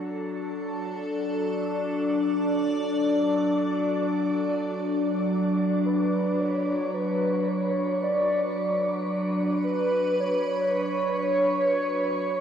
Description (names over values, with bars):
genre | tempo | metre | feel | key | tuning
ambient | free time | none | none | unclear | A4 = 440 Hz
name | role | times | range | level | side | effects
evolving wavetable pad | sustained chords | 0.0-12.4 s | F#3 to D5 | -25 LUFS | equal | phaser, built-in reverb
warm velvety synth lead | melody | 5.9-12.4 s | B4 to D5 | -25 LUFS | equal | chorus, diffuse ambient delay
room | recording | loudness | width
wet shimmer reverb, RT60 6.6 s | dark, warm production | -23 LUFS | side -8 dB against mid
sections
0.0-12.4 A section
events
none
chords
0.0 D; 5.8 Bmadd9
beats
free time